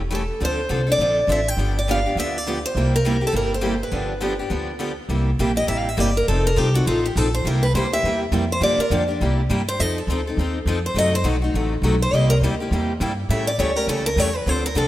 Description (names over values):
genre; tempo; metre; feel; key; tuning
acoustic string swing (jazz manouche); 205 BPM; 4/4; swing 59% on 8ths; C mixolydian; A4 = 438 Hz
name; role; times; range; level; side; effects
upright bass; bass; 0.0-14.9 s; E1 to A2; -22 LUFS; equal; none
picked steel-string acoustic guitar; melody; 0.1-14.9 s; F4 to G5; -22 LUFS; equal; none
picked steel-string acoustic guitar; accompaniment; 0.1-14.9 s; C3 to A4; -26 LUFS; left 3 dB; none
picked steel-string acoustic guitar; accompaniment; 0.1-14.9 s; C3 to A4; -29 LUFS; right 5 dB; none
room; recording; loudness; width
moderate lush hall reverb, RT60 2.7 s; rough home demo mix; -18 LUFS; side -14 dB against mid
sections
0.0-5.1 A section; 5.1-14.9 B section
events
steel-string acoustic guitar solo 5.1-14.9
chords
0.4 Dm7; 1.6 G7; 2.8 C7; 3.9 G7; 5.1 C7; 6.3 F7; 7.5 C7; 8.6 Gm7; 9.2 C7; 9.8 F7; 11.0 F#dim7; 12.1 C7; 13.3 A7